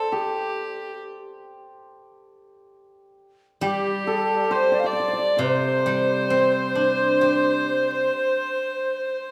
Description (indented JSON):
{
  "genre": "chinese traditional, Chinese chamber ensemble",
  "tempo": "68 BPM",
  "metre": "4/4",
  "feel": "rubato",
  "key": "unclear",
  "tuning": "A4 = 441 Hz",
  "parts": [
    { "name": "xiao", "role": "melody", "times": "0.0-9.3 s", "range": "G4 to F5", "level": "-27 LUFS", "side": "equal", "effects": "none" },
    { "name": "bright fiddle", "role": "second line", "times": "0.0-9.3 s", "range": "G4 to D5", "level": "-28 LUFS", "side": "equal", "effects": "none" },
    { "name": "hammered dulcimer", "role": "second line", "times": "0.0-9.3 s", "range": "G4 to D5", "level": "-31 LUFS", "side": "equal", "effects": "none" },
    { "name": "steel-string zither", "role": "accompaniment", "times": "3.6-9.0 s", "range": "C3 to G4", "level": "-29 LUFS", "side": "equal", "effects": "none" }
  ],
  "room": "wet concert hall reverb, RT60 1.8 s",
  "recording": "none",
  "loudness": "-22 LUFS",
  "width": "mono",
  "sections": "0.0-9.3 A section",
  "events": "none",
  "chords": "none",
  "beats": "| 0.11 1.00 1.88 2.75 | 3.63 4.51 5.40 6.29 | 7.18 8.08 8.99"
}